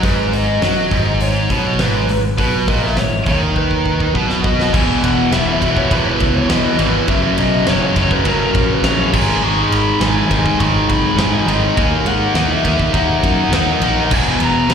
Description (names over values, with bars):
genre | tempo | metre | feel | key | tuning
hard rock | 102 BPM | 4/4 | straight | G# minor | A4 = 439 Hz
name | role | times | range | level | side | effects
lead guitar through a small cranked amp | melody | 0.0-14.7 s | A#4 to C#6 | -21 LUFS | left 2 dB | overdrive, slapback echo
high-gain distorted guitar | riff | 0.0-14.7 s | E2 to D#4 | -16 LUFS | equal | distortion, slapback echo
picked electric bass | bass | 0.0-14.7 s | E1 to G#2 | -20 LUFS | equal | none
huge arena drum kit | drums | 0.0-14.7 s | crash cymbal, hi-hat, kick drum, ride cymbal, snare drum | -20 LUFS | equal | none
room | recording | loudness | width
small room ambience | live gig heard through the venue's PA, recital hall reverb | -13 LUFS | side -7 dB against mid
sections
0.0-4.7 A section; 4.7-14.7 B section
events
drum fill 3.6-4.7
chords
0.0 G#m; 4.7 E5; 7.1 F#; 9.1 G#5; 11.8 D#m; 14.1 E